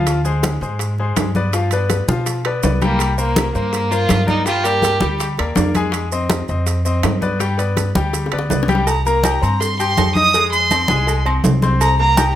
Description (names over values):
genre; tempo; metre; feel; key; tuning
latin, salsa; 164 BPM; 4/4; straight; C minor; A4 = 439 Hz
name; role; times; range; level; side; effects
bright grand piano; accompaniment; 0.0-12.3 s; F3 to G6; -22 LUFS; left 4 dB; none
upright bass; bass; 0.0-12.3 s; C2 to B2; -20 LUFS; equal; none
bongos and cowbell; percussion; 0.1-12.4 s; none; -27 LUFS; left 3 dB; none
congas; percussion; 0.1-12.4 s; none; -21 LUFS; left 1 dB; none
maracas; percussion; 0.1-12.4 s; none; -31 LUFS; right 10 dB; none
timbales and agogo bells; percussion; 0.1-12.4 s; none; -25 LUFS; right 4 dB; none
dark fiddle; melody; 2.8-5.2, 8.9-12.3 s; Bb3 to Eb6; -18 LUFS; right 2 dB; none
room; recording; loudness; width
light reverb; none; -15 LUFS; side -12 dB against mid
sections
0.0-8.9 A section; 8.9-12.4 B section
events
drum fill 8.1-8.9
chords
0.1 Dm7b5; 1.5 G7; 3.0 C5; 4.5 Gm7; 5.9 Fm7; 7.4 G; 8.9 Cm7; 10.3 Fm; 11.8 C7(no3)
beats
| 0.07 0.43 0.80 1.17 | 1.53 1.90 2.27 2.63 | 3.00 3.37 3.73 4.10 | 4.47 4.84 5.20 5.57 | 5.94 6.30 6.67 7.04 | 7.41 7.77 8.14 8.51 | 8.87 9.24 9.61 9.97 | 10.34 10.71 11.07 11.44 | 11.81 12.18